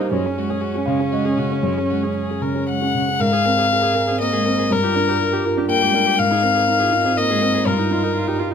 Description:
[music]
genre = neoclassical piano and strings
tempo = 120 BPM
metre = 3/4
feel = rubato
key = unclear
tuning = A4 = 438 Hz
[part]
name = rich violin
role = melody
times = 0.0-8.4 s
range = Ab3 to G5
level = -20 LUFS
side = left 5 dB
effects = none
[part]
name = dark grand piano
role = accompaniment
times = 0.0-8.5 s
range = Gb2 to F5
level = -20 LUFS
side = right 1 dB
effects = none
[part]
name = rich viola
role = accompaniment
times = 0.0-8.5 s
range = Db4 to Bb4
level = -27 LUFS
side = right 2 dB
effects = none
[sound]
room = light reverb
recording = close, detailed microphones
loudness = -16 LUFS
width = side -7 dB against mid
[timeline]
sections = 0.0-3.2 A section; 3.2-8.5 B section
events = none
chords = 0.1 Gbsus2; 3.2 Abadd9; 4.7 Gm7; 6.2 Abadd9; 7.7 Ebadd9/G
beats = | 0.11 0.62 1.12 | 1.64 2.16 2.68 | 3.20 3.71 4.21 | 4.71 5.20 5.70 | 6.19 6.68 7.17 | 7.66 8.15

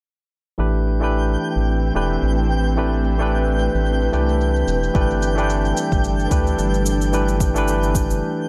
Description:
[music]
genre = organic downtempo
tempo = 110 BPM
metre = 4/4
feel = swing 56% on 16ths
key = unclear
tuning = A4 = 440 Hz
[part]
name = barky tine electric piano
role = accompaniment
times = 0.6-8.5 s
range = E3 to B4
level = -24 LUFS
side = equal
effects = sidechain pumping, tape echo
[part]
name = ethereal airy pad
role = sustained chords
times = 1.7-8.2 s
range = G3 to B4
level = -29 LUFS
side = equal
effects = ensemble chorus, built-in reverb, sidechain pumping
[part]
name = round analog bass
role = bass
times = 0.6-8.2 s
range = E1 to D2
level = -23 LUFS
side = equal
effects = sidechain pumping
[part]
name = shaker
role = drums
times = 0.6-8.2 s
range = none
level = -35 LUFS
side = equal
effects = low-pass filter on perc, low-pass filter on room
[part]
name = twinkling granular texture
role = texture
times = 0.9-8.2 s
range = G5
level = -32 LUFS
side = equal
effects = built-in reverb
[part]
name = electronic kick drum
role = drums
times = 4.9-8.1 s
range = none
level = -23 LUFS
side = equal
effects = none
[sound]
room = light reverb, digital ambience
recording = none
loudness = -19 LUFS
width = mono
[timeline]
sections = 0.6-8.5 A section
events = filter sweep on drum 0.6-8.5; filter sweep on analog synth bass 0.6-8.5; break 8.2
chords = 0.6 Am7; 5.0 G6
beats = | 0.59 1.13 1.68 2.23 | 2.77 3.32 3.86 4.41 | 4.95 5.50 6.04 6.59 | 7.13 7.68 8.22

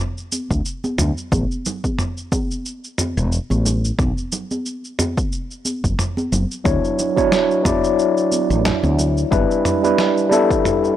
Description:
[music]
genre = sunset chillout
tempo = 90 BPM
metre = 4/4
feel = swing 56% on 16ths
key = D major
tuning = A4 = 440 Hz
[part]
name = dusty soul sampler-style drum kit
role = drums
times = 0.2-11.0 s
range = shaker, snare drum, toms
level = -24 LUFS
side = equal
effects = none
[part]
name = congas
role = percussion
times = 0.3-10.5 s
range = none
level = -27 LUFS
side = right 1 dB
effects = none
[part]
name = woody fretless electric bass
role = bass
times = 0.5-9.4 s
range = E1 to D2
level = -19 LUFS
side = equal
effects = none
[part]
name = electronic kick drum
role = drums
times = 0.5-10.6 s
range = none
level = -23 LUFS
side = equal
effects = overdrive
[part]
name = overdriven tine electric piano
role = accompaniment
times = 6.6-11.0 s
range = F#3 to D5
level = -16 LUFS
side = moving between left 6 dB and right 6 dB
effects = auto-pan, tape echo
[sound]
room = little or no reverb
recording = dry, gritty hardware recording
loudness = -17 LUFS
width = side -11 dB against mid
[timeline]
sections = 0.0-11.0 A section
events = none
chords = 0.0 N.C.; 1.3 A5; 4.0 B5; 6.7 Dmaj9; 9.3 G6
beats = 0.66 | 1.32 1.99 2.65 3.32 | 3.99 4.66 5.32 5.99 | 6.66 7.32 7.99 8.65 | 9.32 9.99 10.65

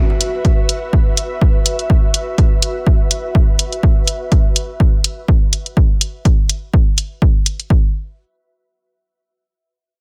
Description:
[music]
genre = minimal techno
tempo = 124 BPM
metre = 4/4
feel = swing 55% on 16ths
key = unclear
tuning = A4 = 440 Hz
[part]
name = ethereal airy pad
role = texture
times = 0.0-3.8 s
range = F#4 to E5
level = -27 LUFS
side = equal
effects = ensemble chorus, built-in reverb, sidechain pumping
[part]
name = electronic hi-hat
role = drums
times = 0.2-7.7 s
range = none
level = -19 LUFS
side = equal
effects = none
[part]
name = electronic kick drum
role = drums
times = 0.4-7.8 s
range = none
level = -15 LUFS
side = equal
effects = none
[sound]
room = little or no reverb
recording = none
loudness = -15 LUFS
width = mono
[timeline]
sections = 0.0-7.7 A section; 7.7-10.0 B section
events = none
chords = 0.0 F#5; 7.7 N.C.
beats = 0.45 0.93 1.41 | 1.90 2.38 2.86 3.35 | 3.83 4.32 4.80 5.28 | 5.77 6.25 6.74 7.22 | 7.70

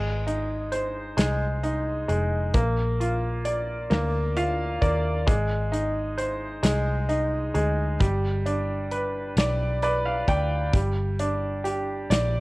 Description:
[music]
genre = six-eight pop ballad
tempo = 44 BPM (dotted quarters)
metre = 6/8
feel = straight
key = unclear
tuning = A4 = 439 Hz
[part]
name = bright upright piano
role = accompaniment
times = 0.0-12.4 s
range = G3 to G5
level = -26 LUFS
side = equal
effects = none
[part]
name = vintage muted fingered electric bass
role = bass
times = 0.0-12.4 s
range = F1 to Eb2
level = -27 LUFS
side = equal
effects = none
[part]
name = loose indie drum kit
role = drums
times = 0.3-12.3 s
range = hi-hat, kick drum, snare drum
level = -25 LUFS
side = equal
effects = none
[sound]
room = studio ambience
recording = worn, warbling old tape, cassette tape, warbly pitch drift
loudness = -23 LUFS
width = side -22 dB against mid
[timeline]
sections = 0.0-12.4 A section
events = upright piano fill 3.9-5.3, 9.4-10.7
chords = 0.0 Ab; 2.5 Bb; 5.3 Ab; 8.0 G; 10.7 G5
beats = 1.18 | 2.55 3.91 | 5.28 6.64 | 8.00 9.37 | 10.73 12.09

